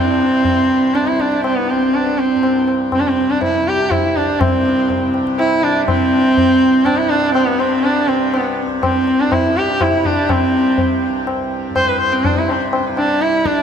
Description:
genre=indian classical, Hindustani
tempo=122 BPM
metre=3/4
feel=straight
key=C raga hamsadhwani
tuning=A4 = 440 Hz
part: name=clear sarangi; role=melody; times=0.0-13.6 s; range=B3 to C5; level=-14 LUFS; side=right 1 dB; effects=ping-pong delay
part: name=tanpura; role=drone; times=0.0-13.6 s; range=C2 to C3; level=-25 LUFS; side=equal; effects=none
part: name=tabla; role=percussion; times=0.4-13.6 s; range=none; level=-22 LUFS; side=left 2 dB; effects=none
room=wet plate reverb, RT60 3.5 s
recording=dreamy mix soaked in reverb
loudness=-13 LUFS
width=side -8 dB against mid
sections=0.0-4.4 A section; 4.4-13.6 B section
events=none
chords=none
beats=0.45 0.94 | 1.44 1.94 2.43 | 2.92 3.42 3.91 | 4.41 4.90 5.39 | 5.88 6.38 6.87 | 7.36 7.85 8.34 | 8.83 9.32 9.81 | 10.29 10.78 11.27 | 11.76 12.24 12.73 | 13.21

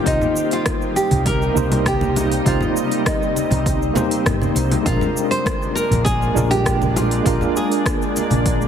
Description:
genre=sunset chillout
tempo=100 BPM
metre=4/4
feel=straight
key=C minor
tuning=A4 = 440 Hz
part: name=tine electric piano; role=accompaniment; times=0.0-8.7 s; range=Ab3 to C5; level=-23 LUFS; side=moving between left 5 dB and right 5 dB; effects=medium stereo tremolo, auto-pan, ping-pong delay, shimmer reverb
part: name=shimmering ambient pad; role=sustained chords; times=0.0-8.7 s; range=C3 to Eb4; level=-24 LUFS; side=equal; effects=chorus, built-in reverb, shimmer reverb
part: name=nylon-string guitar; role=melody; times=0.1-8.7 s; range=Eb4 to C5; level=-23 LUFS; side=equal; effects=vintage 12-bit sampler grit, ping-pong delay, shimmer reverb
part: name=woody fretless electric bass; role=bass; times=0.1-8.7 s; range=G1 to C2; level=-21 LUFS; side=equal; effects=lush chorus
part: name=deep house drum kit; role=drums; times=0.1-8.7 s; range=cabasa, congas, hi-hat, rim click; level=-25 LUFS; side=left 1 dB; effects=none
part: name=electronic kick drum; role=drums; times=0.1-8.6 s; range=none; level=-24 LUFS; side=equal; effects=none
part: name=congas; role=percussion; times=0.2-8.4 s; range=none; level=-26 LUFS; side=right 2 dB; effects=none
room=moderate lush hall reverb, RT60 1.7 s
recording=heavily compressed radio sound, multiband compression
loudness=-16 LUFS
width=side -8 dB against mid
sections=0.1-8.7 A section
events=none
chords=0.1 Cm7; 4.9 Bb7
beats=| 0.06 0.66 1.26 1.86 | 2.46 3.06 3.66 4.26 | 4.86 5.46 6.06 6.66 | 7.26 7.86 8.46

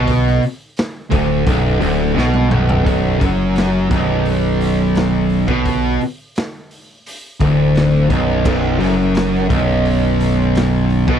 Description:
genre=stoner and doom metal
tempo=86 BPM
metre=4/4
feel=straight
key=B minor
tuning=A4 = 440 Hz
part: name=fuzz guitar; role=riff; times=0.0-11.2 s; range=B1 to B2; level=-15 LUFS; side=equal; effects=distortion
part: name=growling picked electric bass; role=bass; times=0.0-11.2 s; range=B0 to B1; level=-20 LUFS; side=equal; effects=overdrive
part: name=raw garage drum kit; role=drums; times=0.1-11.2 s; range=crash cymbal, hi-hat, kick drum, snare drum, toms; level=-22 LUFS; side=equal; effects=none
room=little or no reverb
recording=none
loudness=-14 LUFS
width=side -9 dB against mid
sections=0.0-2.9 A section; 2.9-11.2 B section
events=drum fill 2.2-2.9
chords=0.0 Bm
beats=| 0.07 0.77 1.46 2.16 | 2.86 3.56 4.26 4.96 | 5.66 6.36 7.05 7.75 | 8.46 9.15 9.86 10.55

